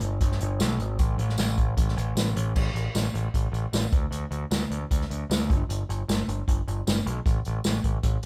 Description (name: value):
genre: indie rock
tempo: 153 BPM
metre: 4/4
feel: straight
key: unclear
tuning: A4 = 438 Hz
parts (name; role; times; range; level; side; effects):
- growling picked electric bass; bass; 0.0-8.3 s; G1 to D2; -30 LUFS; equal; overdrive
- unplugged drum kit; drums; 0.0-8.3 s; crash cymbal, hi-hat, kick drum, snare drum, tambourine; -28 LUFS; equal; none
room: light reverb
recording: band playing live in one room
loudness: -26 LUFS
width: mono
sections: 0.0-2.6 A section; 2.6-8.3 B section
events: none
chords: none